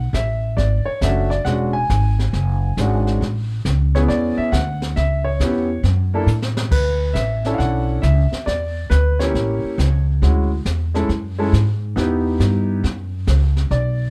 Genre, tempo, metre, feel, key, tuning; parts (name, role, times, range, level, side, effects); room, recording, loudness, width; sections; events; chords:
jazz piano trio; 137 BPM; 4/4; swing 66% on 8ths; A4 = 440 Hz
warm concert grand piano; melody; 0.0-14.1 s; G#3 to G#5; -24 LUFS; equal
upright bass; bass; 0.0-14.1 s; E1 to A2; -21 LUFS; equal
jazz brush drum kit; drums; 0.1-14.1 s; brushed snare drum, crash cymbal, hi-hat, kick drum, snare drum; -28 LUFS; equal
light reverb; dark, warm production; -19 LUFS; mono
0.0-6.7 A section; 6.7-14.1 B section
drum fill 6.3-6.7
0.0 Bm9 (rootless); 1.5 E13; 3.2 Amaj7; 5.0 C#m7b5; 5.8 F#m; 6.7 Bm11; 8.5 E7(no3); 9.3 A7b9; 10.2 Dmaj9#11; 12.0 Emmaj7; 12.8 F#5